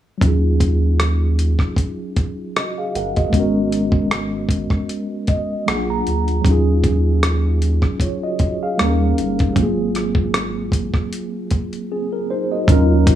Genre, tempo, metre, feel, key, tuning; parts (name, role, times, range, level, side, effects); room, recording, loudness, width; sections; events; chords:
R&B, neo-soul; 77 BPM; 4/4; swing 55% on 16ths; Eb minor; A4 = 440 Hz
mellow tine electric piano; accompaniment; 0.2-13.2 s; Gb3 to Bb5; -20 LUFS; equal; medium stereo tremolo, low-pass filter
rubbery square bass; bass; 0.2-13.2 s; G1 to Eb2; -19 LUFS; equal
dusty soul sampler-style drum kit; drums; 0.2-13.2 s; hi-hat, kick drum, rim click; -18 LUFS; equal
light reverb; small room ambience; -16 LUFS; side -11 dB against mid
0.2-12.7 A section
filter sweep on tine electric piano 0.2-12.7; tine electric piano fill 4.9-6.5
0.2 Ebm11; 3.3 Abm11; 5.7 Bb7b13; 6.5 Ebm11; 8.8 Eb7; 9.6 Ab13